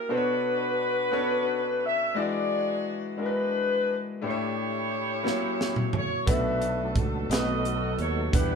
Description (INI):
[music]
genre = slow gospel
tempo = 58 BPM (dotted quarters)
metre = 6/8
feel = straight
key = unclear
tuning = A4 = 444 Hz
[part]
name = mellow saxophone section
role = melody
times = 0.0-8.6 s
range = D4 to E5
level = -28 LUFS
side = left 1 dB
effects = none
[part]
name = clear grand piano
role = accompaniment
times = 0.0-8.6 s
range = A2 to F#5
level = -30 LUFS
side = left 2 dB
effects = none
[part]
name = crisp fusion drum kit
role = drums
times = 5.3-8.5 s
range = hi-hat, kick drum, snare drum, toms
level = -27 LUFS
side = right 2 dB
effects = none
[part]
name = percussive tonewheel organ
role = sustained chords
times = 6.3-8.6 s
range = D3 to F#5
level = -35 LUFS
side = right 2 dB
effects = slow rotary speaker, overdrive, chorus vibrato
[part]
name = fingered electric bass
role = bass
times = 6.3-8.6 s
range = B1 to E2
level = -31 LUFS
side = right 1 dB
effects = none
[sound]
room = moderate studio reverb, RT60 0.8 s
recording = band playing live in one room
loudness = -25 LUFS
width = side -5 dB against mid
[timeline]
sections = 0.0-8.6 A section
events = drum fill 5.2-6.3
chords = 0.1 Bm9; 2.2 E9; 4.2 A7sus4; 5.2 F#7; 6.3 Bm7; 7.3 B7